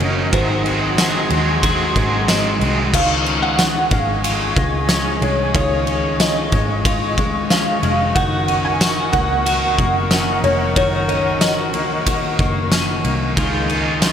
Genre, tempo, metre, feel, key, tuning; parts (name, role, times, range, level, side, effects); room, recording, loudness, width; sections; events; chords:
dream pop; 92 BPM; 4/4; straight; Db major; A4 = 439 Hz
felt-muted upright piano; melody; 0.0-12.7 s; C5 to Ab5; -22 LUFS; right 1 dB; analog chorus, digital delay
crunchy overdriven guitar; accompaniment; 0.0-2.9, 13.4-14.1 s; Ab2 to Bb4; -22 LUFS; right 3 dB; harmonic tremolo, lush chorus
flute section; sustained chords; 0.0-14.1 s; Eb4 to Db6; -23 LUFS; left 2 dB
clean electric guitar; arpeggios; 0.0-14.1 s; Eb3 to Gb4; -23 LUFS; left 4 dB; lush chorus, digital delay
vintage muted picked electric bass; bass; 0.0-14.1 s; F1 to Eb2; -23 LUFS; equal
oversized low-tuned drum kit; drums; 0.0-14.1 s; crash cymbal, kick drum, ride cymbal, snare drum, tambourine; -20 LUFS; equal
wet lush hall reverb, RT60 3.4 s; bright 1980s-style digital production; -15 LUFS; side -8 dB against mid
0.0-2.9 A section; 2.9-14.1 A section
0.3 Ab7; 2.9 Dbadd9; 8.2 Gb6; 13.4 Dbadd9